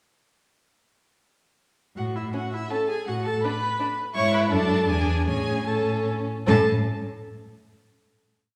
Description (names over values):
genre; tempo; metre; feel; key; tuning
quick classical-period movement for string quartet; 147-169 BPM; 3/4; rubato; A major; A4 = 440 Hz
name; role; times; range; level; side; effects
rich violin; melody; 2.0-6.7 s; E5 to C#6; -34 LUFS; equal; none
warm viola; accompaniment; 2.0-6.7 s; E4 to C#5; -29 LUFS; equal; none
rich cello; bass; 2.0-6.7 s; E2 to A2; -28 LUFS; equal; none
rich violin; second line; 2.3-6.7 s; C#4 to E4; -31 LUFS; equal; none
room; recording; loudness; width
wet recital hall reverb, RT60 1.6 s; heard from further back in the room; -24 LUFS; mono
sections
2.0-6.5 A section; 6.5-7.6 final chord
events
none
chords
2.0 A5; 3.1 B7(no3)/A; 4.2 E/G#; 4.5 D/F#; 4.9 E7; 5.3 A; 6.5 N.C.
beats
| 1.97 2.34 2.71 | 3.08 3.44 3.80 | 4.16 4.52 4.89 | 5.28 5.67 6.07 | 6.47